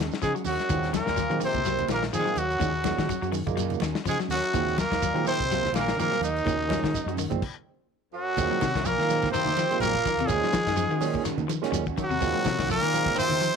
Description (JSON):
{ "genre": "afrobeat", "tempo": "125 BPM", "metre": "4/4", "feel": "swing 55% on 16ths", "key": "Eb dorian", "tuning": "A4 = 440 Hz", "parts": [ { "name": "electric guitar at the edge of break-up", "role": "arpeggios", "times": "0.0-13.6 s", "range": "C3 to Gb3", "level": "-33 LUFS", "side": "left 12 dB", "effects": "none" }, { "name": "electric guitar at the edge of break-up", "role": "stabs", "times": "0.0-13.3 s", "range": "Eb3 to Gb4", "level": "-37 LUFS", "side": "right 14 dB", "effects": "lush chorus" }, { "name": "fingered electric bass", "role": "bass", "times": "0.0-13.5 s", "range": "Bb1 to F3", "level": "-32 LUFS", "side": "left 1 dB", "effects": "none" }, { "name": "warm soul drum kit", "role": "drums", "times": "0.0-13.6 s", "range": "crash cymbal, hi-hat, kick drum, snare drum", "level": "-33 LUFS", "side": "left 5 dB", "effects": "none" }, { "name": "shekere", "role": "percussion", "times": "0.1-13.6 s", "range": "none", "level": "-38 LUFS", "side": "right 6 dB", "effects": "none" }, { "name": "growling trumpet", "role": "melody", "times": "0.2-13.6 s", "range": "Eb4 to C5", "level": "-27 LUFS", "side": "equal", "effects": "none" }, { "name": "raspy tenor saxophone", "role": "second line", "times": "0.2-13.6 s", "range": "Eb3 to C4", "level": "-33 LUFS", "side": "right 13 dB", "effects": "none" }, { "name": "warm trombone section", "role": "second line", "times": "0.2-13.6 s", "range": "Eb2 to C3", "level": "-35 LUFS", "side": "left 12 dB", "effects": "none" }, { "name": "congas", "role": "percussion", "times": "0.4-13.5 s", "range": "none", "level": "-36 LUFS", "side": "right 10 dB", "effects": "none" }, { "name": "barky tine electric piano", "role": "accompaniment", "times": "0.7-13.2 s", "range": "Bb2 to Db4", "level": "-32 LUFS", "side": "right 13 dB", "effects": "overdrive" } ], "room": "light reverb", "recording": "1960s-style stereo with parts hard left and right", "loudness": "-23 LUFS", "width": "side -6 dB against mid", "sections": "0.0-8.4 A section; 8.4-13.6 B section", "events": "stop 7.4-8.4", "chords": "0.0 Ab7sus4/Eb; 0.7 Ebm69; 2.6 Ab7sus4/Eb; 4.5 Ebm69; 6.5 Ab7sus4/Eb; 8.4 Ebm69; 10.3 Ab7sus4/Eb; 12.2 Ebm69" }